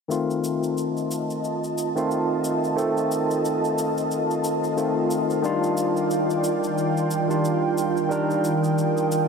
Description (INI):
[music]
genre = sunset chillout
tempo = 90 BPM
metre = 4/4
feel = swing 58% on 16ths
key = unclear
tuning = A4 = 441 Hz
[part]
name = barky tine electric piano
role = accompaniment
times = 0.1-9.3 s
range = Eb3 to Bb4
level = -23 LUFS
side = moving between left 6 dB and right 3 dB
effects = overdrive, auto-pan, low-pass filter, diffuse ambient delay
[part]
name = ethereal airy pad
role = sustained chords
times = 0.5-9.3 s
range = Eb3 to Eb6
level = -25 LUFS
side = right 1 dB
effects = ensemble chorus, built-in reverb
[part]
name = shaker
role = drums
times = 0.1-9.3 s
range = none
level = -39 LUFS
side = left 1 dB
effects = none
[sound]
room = wet huge ambient reverb, RT60 8.5 s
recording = dreamy mix soaked in reverb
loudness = -21 LUFS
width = side -5 dB against mid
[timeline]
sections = 0.1-9.3 A section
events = filter sweep on tine electric piano 0.1-9.3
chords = 0.1 F7; 5.4 Ebmaj9